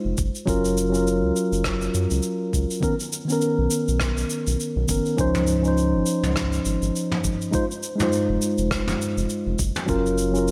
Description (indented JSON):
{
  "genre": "sunset chillout",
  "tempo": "102 BPM",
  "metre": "4/4",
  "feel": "swing 57% on 16ths",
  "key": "unclear",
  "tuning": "A4 = 438 Hz",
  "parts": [
    { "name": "mellow tine electric piano", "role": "accompaniment", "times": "0.0-10.5 s", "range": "Eb3 to C5", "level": "-25 LUFS", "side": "equal", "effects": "digital delay, slapback echo" },
    { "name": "round analog bass", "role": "bass", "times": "0.1-10.5 s", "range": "F1 to Gb2", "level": "-28 LUFS", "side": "equal", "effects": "tube saturation" },
    { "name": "electronic kick drum", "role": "drums", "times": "0.2-10.0 s", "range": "none", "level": "-30 LUFS", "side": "equal", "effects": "none" },
    { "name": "vintage brush drum kit", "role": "drums", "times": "0.2-10.5 s", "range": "rim click, shaker, toms", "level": "-32 LUFS", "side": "equal", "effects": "none" }
  ],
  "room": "moderate lush hall reverb, RT60 1.6 s, studio reverb",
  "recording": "big arena sound",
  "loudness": "-23 LUFS",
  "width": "mono",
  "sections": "0.0-10.5 A section",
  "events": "none",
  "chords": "0.2 Gbmaj7; 2.8 Cbmaj9; 5.2 Dbmaj9; 7.5 Fm7; 9.6 Gbmaj7"
}